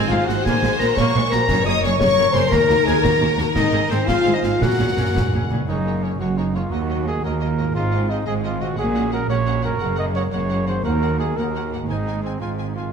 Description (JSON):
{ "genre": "cinematic, heroic adventure film score", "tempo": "116 BPM (dotted quarters)", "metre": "6/8", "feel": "straight", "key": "Gb lydian", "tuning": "A4 = 440 Hz", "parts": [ { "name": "warm symphonic violin section", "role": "melody", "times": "0.0-12.8 s", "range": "C5 to Eb6", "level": "-30 LUFS", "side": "left 2 dB", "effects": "none" }, { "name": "clear oboe", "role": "second line", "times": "0.0-5.5 s", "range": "C5 to Eb6", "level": "-26 LUFS", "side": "right 3 dB", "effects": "none" }, { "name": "rich symphonic violin section", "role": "second line", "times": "0.0-12.8 s", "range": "Bb3 to Db5", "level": "-29 LUFS", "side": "left 2 dB", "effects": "none" }, { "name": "clear symphonic viola section", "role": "accompaniment", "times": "0.0-12.8 s", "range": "Eb3 to Ab4", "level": "-32 LUFS", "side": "equal", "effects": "none" }, { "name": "mellow French horn section", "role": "sustained chords", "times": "0.0-12.8 s", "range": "Bb3 to Eb5", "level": "-24 LUFS", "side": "left 4 dB", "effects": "none" }, { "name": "concert harp", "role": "arpeggios", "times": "0.0-12.9 s", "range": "Gb2 to Db6", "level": "-30 LUFS", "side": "left 8 dB", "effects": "none" }, { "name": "rich symphonic cello section", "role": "bass", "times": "0.1-12.9 s", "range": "Eb2 to Bb2", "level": "-25 LUFS", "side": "right 3 dB", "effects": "none" }, { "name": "rich symphonic double bass section", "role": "bass", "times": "0.1-12.9 s", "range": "Gb1 to Eb2", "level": "-25 LUFS", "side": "right 3 dB", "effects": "none" }, { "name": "concert snare drum, concert bass drum and clash cymbals", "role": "drums", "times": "0.3-5.3 s", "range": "none", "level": "-27 LUFS", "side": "right 1 dB", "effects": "none" }, { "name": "timpani", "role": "percussion", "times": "1.5-2.0, 4.6-5.6 s", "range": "Gb2", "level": "-28 LUFS", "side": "equal", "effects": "none" }, { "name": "mellow trumpet", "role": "stabs", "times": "5.7-12.9 s", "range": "C4 to Eb5", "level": "-26 LUFS", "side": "right 2 dB", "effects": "none" } ], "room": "wet scoring stage reverb, RT60 1.7 s", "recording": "none", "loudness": "-17 LUFS", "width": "side -6 dB against mid", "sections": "0.0-5.7 A section; 5.7-12.9 B section", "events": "timpani fill 4.6-5.7", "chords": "0.5 Gbadd9/Bb; 1.5 Gbadd9; 2.5 Ebm; 3.5 Ab; 4.6 Gbadd9/Bb; 5.7 Gbadd9; 6.7 Ebm; 7.8 Ab; 8.8 Gbadd9/Bb; 9.8 Gbadd9; 10.8 Ebm; 11.9 Ab" }